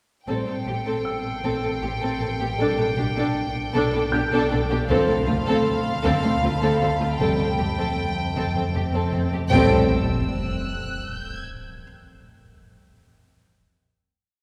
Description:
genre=cinematic, suspense film score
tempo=78 BPM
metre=3/4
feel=straight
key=A minor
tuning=A4 = 440 Hz
part: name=warm studio violin section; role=melody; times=0.3-9.9 s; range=F5 to G5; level=-32 LUFS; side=equal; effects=none
part: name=warm studio violin section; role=second line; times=0.3-9.9 s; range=F4 to A4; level=-30 LUFS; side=equal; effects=none
part: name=rich studio viola section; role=accompaniment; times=0.3-9.9 s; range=C4 to D4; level=-31 LUFS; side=equal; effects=none
part: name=mellow French horn section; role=sustained chords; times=0.3-9.9 s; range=F3 to C5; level=-32 LUFS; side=equal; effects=none
part: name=dark studio double bass section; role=bass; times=0.3-9.9 s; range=F1 to D2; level=-32 LUFS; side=equal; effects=none
part: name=warm studio cello section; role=bass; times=0.3-9.9 s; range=D2 to B2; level=-32 LUFS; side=equal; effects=none
part: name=metallic inharmonic drone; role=drone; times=1.0-9.9 s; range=A1 to F2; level=-32 LUFS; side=equal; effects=chorus, built-in reverb
part: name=warm studio violin section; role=texture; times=0.3-11.4 s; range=A5 to C#7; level=-39 LUFS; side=equal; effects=none
part: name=felt-muted upright piano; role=texture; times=1.0-7.2 s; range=E6 to G6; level=-37 LUFS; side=equal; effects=none
part: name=swell and sub drop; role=sound effects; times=8.6-11.8 s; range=none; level=-33 LUFS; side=equal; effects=none
room=wet church reverb, RT60 3.0 s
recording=recorded in a church or concert hall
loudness=-23 LUFS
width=mono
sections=0.3-9.5 A section; 9.5-11.8 final chord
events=impact 9.5-11.8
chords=0.3 Am7; 2.6 Gadd9/B; 4.9 Dm7; 7.2 Fadd9; 9.5 Am7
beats=| 0.28 1.05 1.82 | 2.59 3.35 4.12 | 4.89 5.66 6.43 | 7.20 7.97 8.74 | 9.51 10.28 11.05

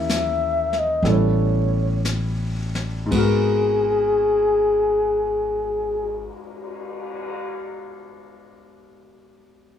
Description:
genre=jazz ballad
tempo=54-66 BPM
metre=4/4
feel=swing 66% on 8ths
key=G# minor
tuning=A4 = 442 Hz
part: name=breathy flugelhorn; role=melody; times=0.0-6.3 s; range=G#4 to E5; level=-20 LUFS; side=left 2 dB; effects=none
part: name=warm concert grand piano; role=accompaniment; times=0.0-9.8 s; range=G#2 to A#4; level=-26 LUFS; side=equal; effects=none
part: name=upright bass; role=bass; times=0.0-6.3 s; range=G#1 to D#2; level=-25 LUFS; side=equal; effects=none
part: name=jazz brush drum kit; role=drums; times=0.1-7.3 s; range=brushed snare drum, cymbal swell, hi-hat, kick drum, ride cymbal, snare drum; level=-31 LUFS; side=left 2 dB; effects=none
room=little or no reverb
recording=small room ambience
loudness=-19 LUFS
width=side -9 dB against mid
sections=0.0-3.1 A section; 3.1-7.5 B section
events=slowing down 0.0-3.1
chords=0.0 D#7b9; 1.0 A7; 3.1 G#m9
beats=0.09 1.03 2.04 | 3.11 4.22 5.31 6.42

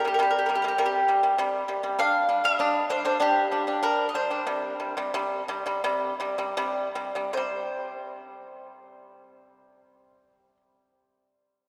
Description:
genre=mongolian traditional, Mongolian folk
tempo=75-100 BPM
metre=4/4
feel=straight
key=unclear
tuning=A4 = 440 Hz
part: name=mandolin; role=melody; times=0.0-10.6 s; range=G4 to F5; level=-28 LUFS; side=equal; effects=none
part: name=pipa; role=arpeggios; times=0.0-10.6 s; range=C3 to D4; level=-30 LUFS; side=equal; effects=none
room=wet cathedral reverb, RT60 4.5 s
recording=recorded in a church or concert hall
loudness=-26 LUFS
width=mono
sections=0.0-7.3 A section; 7.3-10.5 B section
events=slowing down 2.0-7.3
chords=0.0 C5; 2.0 G5; 4.5 C5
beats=0.19 0.79 1.39 | 1.99 2.59 3.20 3.83 | 4.47 5.13 5.83 6.57 | 7.34 8.14 8.95 9.75

